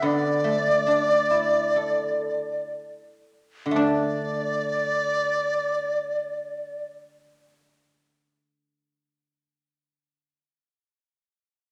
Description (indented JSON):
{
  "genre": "chinese traditional, Chinese chamber ensemble",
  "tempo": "56-75 BPM",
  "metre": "4/4",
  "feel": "rubato",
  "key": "unclear",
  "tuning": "A4 = 440 Hz",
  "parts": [
    { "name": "mellow dizi", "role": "melody", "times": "0.0-6.9 s", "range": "D5", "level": "-26 LUFS", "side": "equal", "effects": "none" },
    { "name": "pipa", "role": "second line", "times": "0.0-6.8 s", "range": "D4", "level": "-37 LUFS", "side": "equal", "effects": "none" },
    { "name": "guzheng", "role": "accompaniment", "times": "0.0-10.3 s", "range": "D3 to A4", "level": "-29 LUFS", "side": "equal", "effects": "none" }
  ],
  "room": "wet recital hall reverb, RT60 1.4 s",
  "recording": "none",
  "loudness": "-24 LUFS",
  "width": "mono",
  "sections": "0.0-3.8 A section; 3.8-7.9 B section",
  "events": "slowing down 0.0-3.8",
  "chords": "none",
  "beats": "| 0.02 0.84 1.73 2.71 | 3.76 4.82 5.84 6.87"
}